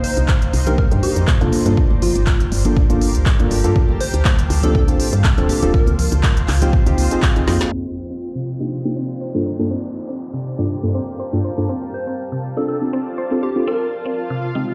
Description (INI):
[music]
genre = deep house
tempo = 121 BPM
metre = 4/4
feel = swing 53% on 16ths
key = C dorian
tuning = A4 = 439 Hz
[part]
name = plucky unison lead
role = melody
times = 0.0-6.2, 11.9-14.2 s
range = F4 to C5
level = -28 LUFS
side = equal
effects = tape echo
[part]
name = deep house drum kit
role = drums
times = 0.0-7.8 s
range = crash cymbal, handclaps, hi-hat, snare drum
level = -28 LUFS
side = equal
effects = low-pass filter on hats, low-pass filter on snare, low-pass filter on cymbals
[part]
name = granular cloud pad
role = texture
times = 0.0-14.7 s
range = Eb4 to A5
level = -32 LUFS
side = equal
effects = built-in reverb, sidechain pumping
[part]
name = woody FM bass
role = bass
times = 0.2-7.6 s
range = D1 to C3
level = -20 LUFS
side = equal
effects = tube saturation, sidechain pumping
[part]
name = electronic kick drum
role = drums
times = 0.3-7.3 s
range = none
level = -18 LUFS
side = equal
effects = overdrive
[part]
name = congas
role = percussion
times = 0.3-7.6 s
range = none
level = -30 LUFS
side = equal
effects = none
[part]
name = deep mellow chord stab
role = stabs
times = 0.7-14.7 s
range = G2 to A4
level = -24 LUFS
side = equal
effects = lush chorus, sidechain pumping, tape echo
[part]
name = mallet-like synth pluck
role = arpeggios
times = 7.7-14.6 s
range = C3 to C5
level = -29 LUFS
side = equal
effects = chorus, sidechain pumping, tape echo
[part]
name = downlifter and reverse cymbal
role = sound effects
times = 8.2-14.7 s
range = none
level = -48 LUFS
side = equal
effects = none
[sound]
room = light reverb, digital ambience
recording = played on a big sound system in a bare room, large studio reverb, low-pass filter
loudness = -18 LUFS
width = mono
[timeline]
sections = 0.0-7.7 A section; 7.7-14.7 B section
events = drum fill 7.5; band accent 7.6; filter sweep on synth arpeggio sound 7.7-14.7; filter sweep 7.7-14.7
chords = 0.0 Cm9; 1.5 Gm9; 3.8 Dm7; 5.7 Dbmaj9#11; 7.7 Cm9; 9.5 Gm9; 11.7 Dm7; 13.7 Dbmaj9#11